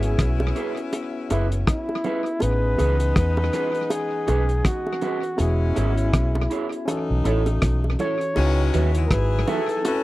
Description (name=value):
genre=lovers rock reggae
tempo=81 BPM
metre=4/4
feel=swing 58% on 16ths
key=E major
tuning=A4 = 440 Hz
part: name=breathy flugelhorn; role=melody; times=0.0-10.0 s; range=E4 to C#5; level=-27 LUFS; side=equal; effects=tape echo
part: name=bright saxophone section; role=second line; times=0.0-10.0 s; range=E3 to G#4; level=-31 LUFS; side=left 6 dB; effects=none
part: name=barky tine electric piano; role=accompaniment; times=0.0-10.0 s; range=E3 to B4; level=-30 LUFS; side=left 1 dB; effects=none
part: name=vintage muted fingered electric bass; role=bass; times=0.0-9.4 s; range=E1 to E2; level=-21 LUFS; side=equal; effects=none
part: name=cloth-damped thuddy drum kit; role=drums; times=0.0-10.0 s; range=crash cymbal, hi-hat, kick drum, rim click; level=-25 LUFS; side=equal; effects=tape echo
part: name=bongos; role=percussion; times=0.4-10.0 s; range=none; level=-28 LUFS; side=right 1 dB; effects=none
part: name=electric guitar through a small old amp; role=stabs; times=0.6-9.6 s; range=C#4 to E5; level=-28 LUFS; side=right 5 dB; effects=lush chorus
part: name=mellow tonewheel organ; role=accompaniment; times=8.6-9.6 s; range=C#3 to D#4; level=-35 LUFS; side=right 9 dB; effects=slow rotary speaker, tape echo
room=light reverb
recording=dry, close 1970s-style studio recording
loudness=-20 LUFS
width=side -17 dB against mid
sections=0.0-8.4 A section; 8.4-10.0 B section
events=none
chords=0.0 E6; 2.4 Amaj9 (rootless); 5.4 E6; 6.9 B9sus4; 8.4 C#m11